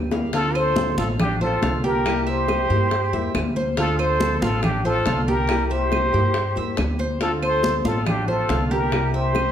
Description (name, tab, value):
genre	latin, Cuban son and guajira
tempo	140 BPM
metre	4/4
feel	straight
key	D minor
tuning	A4 = 440 Hz
part	nylon-string guitar	accompaniment	0.0-9.5 s	C3 to G4	-28 LUFS	left 2 dB	none
part	Cuban tres	arpeggios	0.0-9.5 s	F4 to F5	-29 LUFS	right 2 dB	none
part	upright bass	bass	0.0-9.5 s	A1 to G2	-26 LUFS	right 1 dB	none
part	bongos	percussion	0.1-9.5 s	none	-31 LUFS	left 4 dB	none
part	congas	percussion	0.1-9.5 s	none	-27 LUFS	left 1 dB	none
part	trumpet with plunger mute	melody	0.3-9.5 s	G4 to C5	-24 LUFS	left 2 dB	plate reverb
part	bright silver concert flute	second line	0.3-9.5 s	D4 to A4	-30 LUFS	right 6 dB	none
part	claves	percussion	0.6-9.5 s	none	-35 LUFS	right 4 dB	none
room	wet large studio reverb, RT60 0.9 s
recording	heard from further back in the room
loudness	-19 LUFS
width	side -9 dB against mid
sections	0.3-9.5 A section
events	drum fill 0.1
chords	0.3 Dm7; 2.1 C7; 3.8 Dm7; 5.5 C7; 7.2 Dm7; 8.9 C7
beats	| 0.33 0.77 1.20 1.63 | 2.06 2.49 2.92 3.35 | 3.78 4.21 4.63 5.07 | 5.49 5.92 6.35 6.78 | 7.21 7.64 8.07 8.50 | 8.93 9.36